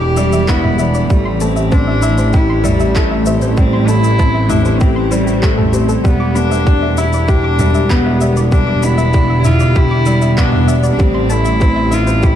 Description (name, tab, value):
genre	piano and strings electronica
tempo	97 BPM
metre	4/4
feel	straight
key	A minor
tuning	A4 = 435 Hz
part	rich cello	melody	0.0-12.4 s	A3 to G4	-19 LUFS	equal	none
part	granular cloud pad	sustained chords	0.0-12.4 s	A2 to D5	-22 LUFS	equal	built-in reverb, sidechain pumping
part	soft round pluck	arpeggios	0.0-12.4 s	G4 to D6	-25 LUFS	left 2 dB	chorus, sidechain pumping, ping-pong delay
part	clear baby grand piano	riff	0.0-12.4 s	G3 to G4	-18 LUFS	left 2 dB	none
part	clear chamber double bass section	bass	0.0-12.4 s	E1 to A1	-15 LUFS	equal	sidechain pumping
part	organic electronic drum kit	drums	0.2-12.4 s	handclaps, shaker, toms	-21 LUFS	right 1 dB	overdrive
part	electronic kick drum	drums	0.5-12.4 s	none	-14 LUFS	right 1 dB	overdrive
room	digital ambience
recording	dark, warm production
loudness	-11 LUFS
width	side -10 dB against mid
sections	0.0-12.4 A section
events	none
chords	0.0 Em7; 1.1 Am7; 6.0 Em7; 11.0 Am7